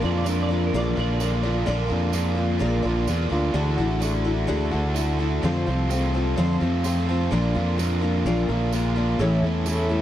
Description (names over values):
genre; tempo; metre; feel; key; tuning
folk rock and heartland rock; 128 BPM; 4/4; straight; unclear; A4 = 438 Hz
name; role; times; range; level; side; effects
twelve-string electric guitar; second line; 0.0-2.4 s; Bb4 to D5; -34 LUFS; right 4 dB; ensemble chorus
picked twelve-string acoustic guitar; accompaniment; 0.0-10.0 s; A2 to D5; -26 LUFS; left 2 dB; none
biting overdriven guitar; riff; 0.0-10.0 s; F2 to F#4; -27 LUFS; right 1 dB; none
fingered electric bass; bass; 0.0-10.0 s; A1 to F2; -24 LUFS; equal; none
tambourine; percussion; 0.3-9.8 s; none; -38 LUFS; right 15 dB; none
room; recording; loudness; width
light reverb; dry, close 1970s-style studio recording; -21 LUFS; side -12 dB against mid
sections
0.0-10.0 A section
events
none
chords
0.0 Bb; 3.6 Dadd9; 5.4 F6; 7.3 Bb; 9.2 A